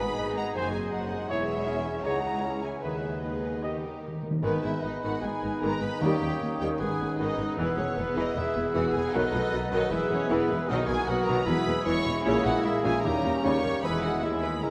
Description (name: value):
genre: classical, dramatic, fast romantic movement for symphony orchestra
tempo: 154 BPM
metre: 4/4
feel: straight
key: G# minor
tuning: A4 = 440 Hz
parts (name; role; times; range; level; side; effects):
- dark symphonic violin section; melody; 0.0-14.7 s; B4 to C#6; -38 LUFS; equal; none
- clear clarinet; second line; 0.0-14.7 s; B3 to A4; -40 LUFS; equal; none
- mellow hollow concert flute; second line; 0.0-14.7 s; B4 to F#6; -41 LUFS; equal; none
- mellow oboe; second line; 0.0-14.7 s; G4 to D#5; -41 LUFS; equal; none
- rich symphonic violin section; second line; 0.0-14.7 s; B3 to D#5; -40 LUFS; equal; none
- clear bassoon; accompaniment; 0.0-14.7 s; G#3 to E4; -39 LUFS; equal; none
- dark symphonic viola section; accompaniment; 0.0-14.7 s; C#3 to E4; -35 LUFS; equal; none
- concert harp; arpeggios; 0.0-14.7 s; E2 to D#6; -39 LUFS; equal; none
- rich symphonic cello section; bass; 0.0-14.7 s; C#2 to B2; -39 LUFS; equal; none
- rich symphonic double bass section; bass; 0.0-14.7 s; E1 to D#2; -39 LUFS; equal; none
- clear French horn section; sustained chords; 0.5-14.7 s; D#3 to A4; -36 LUFS; equal; none
- warm trumpet; stabs; 0.6-3.8 s; B4 to D#5; -40 LUFS; equal; none
- timpani; percussion; 3.6-6.6, 13.0-13.6 s; D#3; -38 LUFS; equal; none
room: wet concert hall reverb, RT60 2.0 s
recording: none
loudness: -28 LUFS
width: mono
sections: 0.0-4.4 A section; 4.4-14.7 B section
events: timpani fill 3.6-4.4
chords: 0.0 G#m; 0.5 G#7/F#; 1.3 C#m/E; 2.1 C#m; 2.8 G#m/D#; 3.6 D#; 4.4 G#m; 6.0 D#7; 6.8 G#m; 7.6 E; 9.1 B7; 9.9 E; 10.7 Bmaj7; 11.5 E; 12.3 A#m7b5; 13.0 D#7; 13.8 E